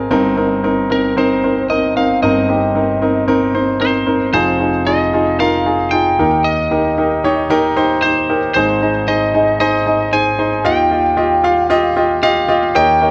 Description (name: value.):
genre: pop.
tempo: 114 BPM.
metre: 4/4.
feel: straight.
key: unclear.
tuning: A4 = 444 Hz.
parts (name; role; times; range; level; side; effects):
clear concert grand piano; accompaniment; 0.0-13.1 s; F1 to F5; -16 LUFS; equal; none.
lightly driven lead guitar; melody; 0.9-13.1 s; Bb4 to Ab5; -20 LUFS; equal; delay.
room: moderate large studio reverb, RT60 0.9 s, small room ambience.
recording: none.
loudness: -15 LUFS.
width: mono.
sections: 0.0-4.3 A section; 4.3-12.8 B section.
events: none.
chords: 0.1 Cm7/G; 4.3 Fm7; 6.2 Eb; 8.6 Ab; 10.7 Ebadd9.